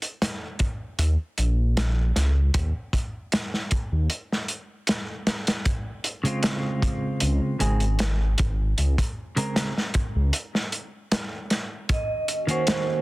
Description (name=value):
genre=trip hop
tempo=77 BPM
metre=4/4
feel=straight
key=Eb dorian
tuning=A4 = 440 Hz
part: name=crunchy breakbeat drum kit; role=drums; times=0.0-12.9 s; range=hi-hat, kick drum, snare drum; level=-25 LUFS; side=equal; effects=none
part: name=dark detuned saw bass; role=bass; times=1.0-10.3 s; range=Ab1 to Eb2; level=-21 LUFS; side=equal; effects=tube saturation
part: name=clean electric guitar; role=accompaniment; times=6.2-13.0 s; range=Db3 to Bb4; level=-27 LUFS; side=equal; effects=tremolo, tape echo
part: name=vibraphone with hard mallets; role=melody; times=11.9-13.0 s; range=C5 to Eb5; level=-26 LUFS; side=right 3 dB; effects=tape echo
part: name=warbly tape-like pad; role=sustained chords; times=12.1-13.0 s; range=Eb3 to Gb4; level=-38 LUFS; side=right 3 dB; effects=none
room=small room ambience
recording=dense, heavily limited modern master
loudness=-23 LUFS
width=side -20 dB against mid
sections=0.0-13.0 A section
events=none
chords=0.0 Eb5; 5.7 Dbmaj7; 11.9 Ebm7